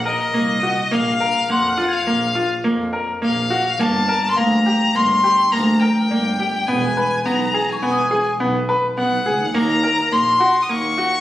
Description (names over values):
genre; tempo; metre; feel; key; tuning
contemporary instrumental, chamber music in an uneven meter; 104 BPM; 5/4; straight; unclear; A4 = 442 Hz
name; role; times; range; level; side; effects
clear violin; melody; 0.0-11.2 s; Eb5 to Eb6; -19 LUFS; left 2 dB; none
dark double bass; bass; 0.0-11.1 s; E1 to F2; -23 LUFS; right 1 dB; none
worn celesta; texture; 0.0-11.2 s; D5 to Ab6; -26 LUFS; left 2 dB; none
clear grand piano; arpeggios; 0.1-11.1 s; Bb3 to B4; -20 LUFS; equal; none
room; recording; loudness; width
moderate studio reverb, RT60 0.8 s; recorded on a phone in the room, studio reverb, compression; -16 LUFS; side -14 dB against mid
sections
0.0-11.2 A section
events
none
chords
0.0 Ebm; 0.9 Bb5; 3.8 Gm; 6.7 E6; 9.6 Ebm7